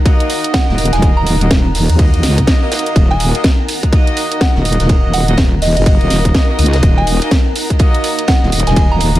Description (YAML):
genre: bass house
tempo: 124 BPM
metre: 4/4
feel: swing 61% on 16ths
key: Eb minor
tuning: A4 = 440 Hz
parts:
  - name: granular cloud pad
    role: texture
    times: 0.0-9.2 s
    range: Eb4 to Bb5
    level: -23 LUFS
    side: equal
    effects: built-in reverb, sidechain pumping
  - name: clear horn section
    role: stabs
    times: 0.1-9.2 s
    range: Bb3 to Eb5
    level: -22 LUFS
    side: equal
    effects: sidechain pumping, digital delay
  - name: electronic kick drum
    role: drums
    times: 0.1-8.9 s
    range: none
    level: -12 LUFS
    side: equal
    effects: overdrive
  - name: house drum kit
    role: drums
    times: 0.1-9.2 s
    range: hi-hat, snare drum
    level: -19 LUFS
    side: right 1 dB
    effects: overdrive
  - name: vintage drum kit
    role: drums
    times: 0.1-9.1 s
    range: hi-hat, ride cymbal, snare drum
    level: -27 LUFS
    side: right 1 dB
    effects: high-pass filter on cymbals, high-pass filter on hats, high-pass filter on snare, high-pass filter on room
  - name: soft synth bell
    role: melody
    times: 0.5-9.2 s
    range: Eb5 to Bb5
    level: -22 LUFS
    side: right 2 dB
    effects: chorus, digital delay
  - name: wobble bass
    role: bass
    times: 0.7-9.2 s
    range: Eb1 to Eb2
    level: -13 LUFS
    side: equal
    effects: chorus, sidechain pumping
room: studio reverb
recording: none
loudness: -10 LUFS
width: side -15 dB against mid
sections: 0.0-9.2 A section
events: none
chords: 0.0 Ebm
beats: 0.06 0.54 | 1.02 1.51 1.99 2.48 | 2.96 3.44 3.93 4.41 | 4.89 5.38 5.86 6.35 | 6.83 7.31 7.80 8.28 | 8.77